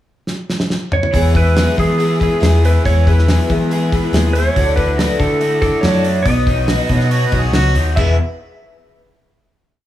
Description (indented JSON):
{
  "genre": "folk rock and heartland rock",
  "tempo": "140 BPM",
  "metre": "4/4",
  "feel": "straight",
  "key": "E major",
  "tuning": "A4 = 440 Hz",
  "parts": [
    { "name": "damped 70s drum kit", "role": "drums", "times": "0.3-8.1 s", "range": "crash cymbal, hi-hat, kick drum, snare drum, toms", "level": "-19 LUFS", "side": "equal", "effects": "none" },
    { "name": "clean lap steel guitar", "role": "melody", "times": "0.9-8.2 s", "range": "G#4 to E5", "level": "-20 LUFS", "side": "right 2 dB", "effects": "none" },
    { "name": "picked twelve-string acoustic guitar", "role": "accompaniment", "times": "1.1-8.1 s", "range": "E2 to C#5", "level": "-22 LUFS", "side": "left 4 dB", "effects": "none" },
    { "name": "raw garage guitar", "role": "riff", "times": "1.1-8.2 s", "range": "E2 to D5", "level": "-22 LUFS", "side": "equal", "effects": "overdrive" },
    { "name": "hollow-body short-scale picked electric bass", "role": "bass", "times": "1.1-8.2 s", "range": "E1 to E3", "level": "-15 LUFS", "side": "equal", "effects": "none" },
    { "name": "warm harmonica", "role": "second line", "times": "7.0-8.2 s", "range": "E4 to F#5", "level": "-25 LUFS", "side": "right 1 dB", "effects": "none" }
  ],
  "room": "little or no reverb",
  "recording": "small room ambience",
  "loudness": "-12 LUFS",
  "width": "side -13 dB against mid",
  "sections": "0.0-1.1 pickup bar; 1.1-8.0 verse; 8.0-9.7 final chord",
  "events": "drum fill 0.3-1.1",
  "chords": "0.0 N.C.; 1.1 E; 4.6 Dadd9; 6.3 Badd9; 8.0 E"
}